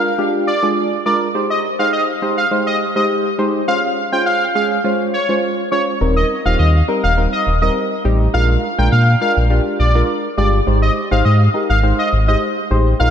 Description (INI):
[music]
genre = dance-pop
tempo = 103 BPM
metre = 4/4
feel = straight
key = unclear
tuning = A4 = 442 Hz
[part]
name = deep mellow chord stab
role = accompaniment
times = 0.0-13.1 s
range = G3 to C5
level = -18 LUFS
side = equal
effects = chorus
[part]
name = octave-doubled lead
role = melody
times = 0.5-13.1 s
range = Db5 to G5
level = -18 LUFS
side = equal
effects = chorus, diffuse ambient delay
[part]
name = sub bass with octave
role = bass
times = 6.0-13.1 s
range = Eb1 to Bb2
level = -14 LUFS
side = equal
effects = none
[sound]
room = wet lush hall reverb, RT60 2.7 s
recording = dreamy mix soaked in reverb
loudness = -14 LUFS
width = side -8 dB against mid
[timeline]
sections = 0.0-13.1 A section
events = none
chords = 0.0 Bb7; 1.3 Abmaj7; 3.7 Dbmaj7; 6.0 Eb6; 8.3 Bb7; 10.7 Abmaj7